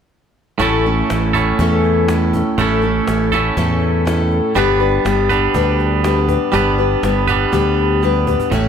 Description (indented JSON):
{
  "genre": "folk rock and heartland rock",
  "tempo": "122 BPM",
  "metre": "4/4",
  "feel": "straight",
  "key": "A mixolydian",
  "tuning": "A4 = 442 Hz",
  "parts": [
    { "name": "picked steel-string acoustic guitar", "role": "accompaniment", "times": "0.6-8.7 s", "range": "A2 to C#5", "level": "-18 LUFS", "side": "left 8 dB", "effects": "none" },
    { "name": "twangy electric guitar", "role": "riff", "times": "0.6-8.7 s", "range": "A2 to B4", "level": "-18 LUFS", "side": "right 7 dB", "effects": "none" },
    { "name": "modern bright fingered electric bass", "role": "bass", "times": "0.6-8.7 s", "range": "G1 to E2", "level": "-18 LUFS", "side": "equal", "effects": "none" },
    { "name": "cajon", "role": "drums", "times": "0.6-8.6 s", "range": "none", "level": "-27 LUFS", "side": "equal", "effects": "none" }
  ],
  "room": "light reverb",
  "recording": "none",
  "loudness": "-13 LUFS",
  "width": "side -7 dB against mid",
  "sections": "0.6-8.5 A section",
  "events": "drum fill 8.0-8.5",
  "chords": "0.6 A; 4.6 G"
}